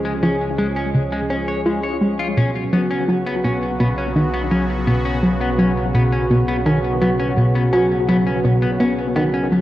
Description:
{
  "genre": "ambient, sequencer-driven space music",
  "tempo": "84 BPM",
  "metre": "4/4",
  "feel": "straight",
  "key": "unclear",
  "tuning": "A4 = 438 Hz",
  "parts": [
    { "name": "sweeping resonant pad", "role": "sustained chords", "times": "0.0-9.6 s", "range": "C#3 to G#4", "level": "-22 LUFS", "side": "right 1 dB", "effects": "chorus, shimmer reverb" },
    { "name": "analog drone", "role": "bass", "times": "0.0-9.6 s", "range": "B1 to C#2", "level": "-27 LUFS", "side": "equal", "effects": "chorus" },
    { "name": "semi-hollow electric guitar", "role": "arpeggios", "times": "0.1-9.5 s", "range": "G#3 to C#5", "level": "-26 LUFS", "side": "left 2 dB", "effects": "auto-pan, ping-pong delay, shimmer reverb" },
    { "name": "plucky analog bass", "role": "riff", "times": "0.2-9.6 s", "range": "B2 to E#4", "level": "-19 LUFS", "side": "equal", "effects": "ping-pong delay" }
  ],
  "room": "wet spring reverb, RT60 2.0 s",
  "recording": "home recording on cassette",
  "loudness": "-16 LUFS",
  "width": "side -14 dB against mid",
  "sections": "0.0-9.6 A section",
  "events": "filter sweep on analog synth bass 0.0-9.6; filter sweep on clean electric guitar 0.0-9.6",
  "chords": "0.0 C#; 2.4 Bsus2",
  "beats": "0.23 0.94 1.66 | 2.37 3.09 3.80 4.52 | 5.23 5.94 6.66 7.37 | 8.09 8.80 9.52"
}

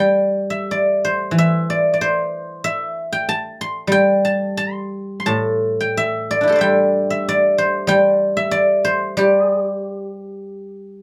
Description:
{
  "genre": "chinese traditional, Chinese solo plucked strings",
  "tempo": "85-96 BPM",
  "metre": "2/4",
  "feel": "rubato",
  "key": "G zhi mode",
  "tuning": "A4 = 442 Hz",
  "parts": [
    { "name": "guzheng", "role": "solo", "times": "0.0-11.0 s", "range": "A2 to C6", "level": "-18 LUFS", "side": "equal", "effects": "none" }
  ],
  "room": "light reverb",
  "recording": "close, detailed microphones",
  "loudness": "-18 LUFS",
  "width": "mono",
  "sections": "0.0-10.6 A section",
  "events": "none",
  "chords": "none",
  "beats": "0.67 | 1.35 2.00 | 2.62 3.26 | 3.91 4.59 | 5.28 5.96 | 6.63 7.28 | 7.91 8.54 | 9.18 9.85 | 10.56"
}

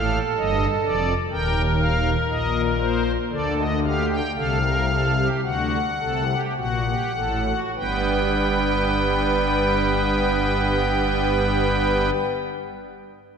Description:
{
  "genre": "classical, baroque-style 3-part fugue for pipe organ",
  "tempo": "49-63 BPM",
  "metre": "4/4",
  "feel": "straight",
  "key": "unclear",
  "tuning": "A4 = 441 Hz",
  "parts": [
    { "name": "pipe organ, strings celeste", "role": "solo", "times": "0.0-12.1 s", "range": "Eb1 to G5", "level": "-20 LUFS", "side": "equal", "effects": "none" }
  ],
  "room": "wet church reverb, RT60 2.6 s",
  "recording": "minimal, uncompressed stereo recording",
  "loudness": "-20 LUFS",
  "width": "side -6 dB against mid",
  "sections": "0.0-7.8 A section; 7.8-12.6 B section",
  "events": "slowing down 0.0-7.8",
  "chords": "0.0 G5; 1.3 Eb; 3.3 D7sus4; 5.4 D7; 7.8 G",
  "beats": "0.37 1.33 2.31 | 3.32 4.36 5.44 6.57 | 7.76 8.98 10.19 11.41"
}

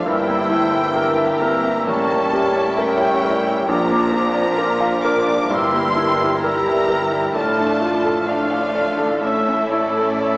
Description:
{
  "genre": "classical, romantic movement for piano and orchestra",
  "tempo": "65 BPM",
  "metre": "4/4",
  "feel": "rubato",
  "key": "unclear",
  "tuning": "A4 = 441 Hz",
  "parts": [
    { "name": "clear concert grand piano", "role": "melody", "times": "0.0-10.4 s", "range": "A1 to G5", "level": "-22 LUFS", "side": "equal", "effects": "none" },
    { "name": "warm studio violin section", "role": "melody", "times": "0.0-10.4 s", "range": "D5 to D6", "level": "-26 LUFS", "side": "equal", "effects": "none" },
    { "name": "dark clarinet", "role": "second line", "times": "0.0-10.4 s", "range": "Bb4 to D5", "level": "-28 LUFS", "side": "equal", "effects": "none" },
    { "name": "warm studio violin section", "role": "second line", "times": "0.0-10.4 s", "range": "C4 to C#5", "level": "-27 LUFS", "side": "equal", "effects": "none" },
    { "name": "mellow bassoon", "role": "accompaniment", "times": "0.0-10.4 s", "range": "E3 to A3", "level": "-24 LUFS", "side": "equal", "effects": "none" },
    { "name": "rich studio viola section", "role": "accompaniment", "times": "0.0-10.4 s", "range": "E3 to F4", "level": "-25 LUFS", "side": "equal", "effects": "none" },
    { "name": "warm French horn section", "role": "sustained chords", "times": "0.0-10.4 s", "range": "E3 to E4", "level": "-26 LUFS", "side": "equal", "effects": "none" },
    { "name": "rich studio double bass section", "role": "bass", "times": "0.0-10.4 s", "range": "G1 to Bb1", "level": "-33 LUFS", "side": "equal", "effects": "none" },
    { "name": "warm studio cello section", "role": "bass", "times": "0.0-10.4 s", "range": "G2 to Bb2", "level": "-29 LUFS", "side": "equal", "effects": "none" },
    { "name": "mellow hollow small flute group", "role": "second line", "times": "0.1-10.4 s", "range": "C#6 to F6", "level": "-24 LUFS", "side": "equal", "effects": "none" }
  ],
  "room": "wet scoring stage reverb, RT60 1.6 s",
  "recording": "small speaker sound",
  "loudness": "-16 LUFS",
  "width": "side -25 dB against mid",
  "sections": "0.0-10.4 A section",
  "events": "none",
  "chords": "0.1 Edim/G; 1.9 A7b9; 3.7 Bb; 5.5 Edim/G; 7.3 Dm/A; 9.2 A",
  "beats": "| 0.07 0.96 1.88 2.79 | 3.68 4.58 5.50 6.41 | 7.34 8.27 9.22 10.21"
}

